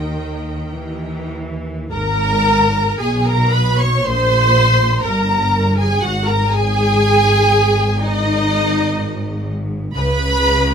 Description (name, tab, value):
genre	classical, slow romantic movement for string orchestra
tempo	48-64 BPM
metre	4/4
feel	rubato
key	G# minor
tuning	A4 = 436 Hz
part	rich studio violin section	melody	0.0-10.7 s	D#5 to C#6	-20 LUFS	right 1 dB	none
part	clear studio violin section	second line	0.0-10.7 s	D#4 to D#5	-21 LUFS	left 1 dB	none
part	clear studio viola section	accompaniment	0.0-10.7 s	D#4 to C#5	-21 LUFS	equal	none
part	rich studio cello section	bass	0.0-10.7 s	G2 to E3	-22 LUFS	right 1 dB	none
part	rich studio double bass section	bass	0.0-10.7 s	G1 to D#2	-20 LUFS	equal	none
room	light reverb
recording	close, detailed microphones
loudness	-14 LUFS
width	side -7 dB against mid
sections	0.0-1.9 A section; 1.9-10.7 B section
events	none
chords	0.0 D#; 1.9 G#m; 4.0 Gmadd11; 6.0 G#5; 10.0 N.C.